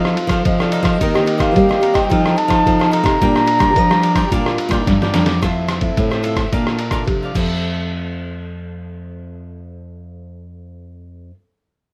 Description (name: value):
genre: samba and choro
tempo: 109 BPM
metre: 4/4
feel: straight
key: Bb major, F major from 5.4 s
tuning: A4 = 440 Hz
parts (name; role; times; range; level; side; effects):
- breathy trombone; second line; 0.0-5.4 s; D4 to G4; -23 LUFS; equal; none
- cavaquinho; accompaniment; 0.0-11.4 s; D4 to A5; -29 LUFS; equal; none
- nylon-string guitar; accompaniment; 0.0-11.4 s; Bb2 to A4; -27 LUFS; equal; none
- nylon-string guitar; bass; 0.0-11.3 s; F2 to G3; -22 LUFS; equal; none
- lo-fi sampler-style drum kit; drums; 0.1-7.5 s; crash cymbal, kick drum, ride cymbal, rim click, snare drum; -23 LUFS; equal; none
- mellow wooden flute; melody; 0.5-4.8 s; D5 to Bb5; -21 LUFS; equal; none
room: moderate studio reverb, RT60 0.6 s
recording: none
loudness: -16 LUFS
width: mono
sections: 0.0-5.4 A section; 5.4-7.6 B section; 7.6-9.8 C section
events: drum fill 4.9-5.4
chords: 0.0 F7; 1.0 Cm7/Eb; 2.1 F7; 3.2 Bb6; 5.4 Fmaj7; 6.5 Bbmaj7; 7.4 Fmaj7